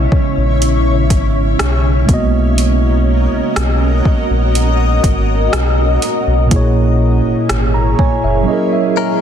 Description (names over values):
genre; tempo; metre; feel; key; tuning
contemporary R&B; 61 BPM; 4/4; straight; G# minor; A4 = 440 Hz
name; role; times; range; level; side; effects
mellow tine electric piano; accompaniment; 0.0-9.2 s; A#2 to A#5; -18 LUFS; right 3 dB; slow stereo tremolo
granular cloud pad; sustained chords; 0.0-9.2 s; C#3 to D#5; -18 LUFS; left 1 dB; built-in reverb
sub bass with octave; bass; 0.0-8.5 s; F#1 to B1; -14 LUFS; equal; none
smooth R&B drum kit; drums; 0.1-8.2 s; hi-hat, kick drum, rim click; -17 LUFS; equal; none
direct-recorded clean electric guitar; arpeggios; 9.0-9.2 s; C#4 to A#4; -17 LUFS; left 11 dB; none
room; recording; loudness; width
light reverb; dense, heavily limited modern master; -11 LUFS; side -9 dB against mid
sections
0.0-9.2 A section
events
tine electric piano fill 7.5-9.2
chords
0.0 C#m7; 2.1 G#m9/B; 6.5 F#9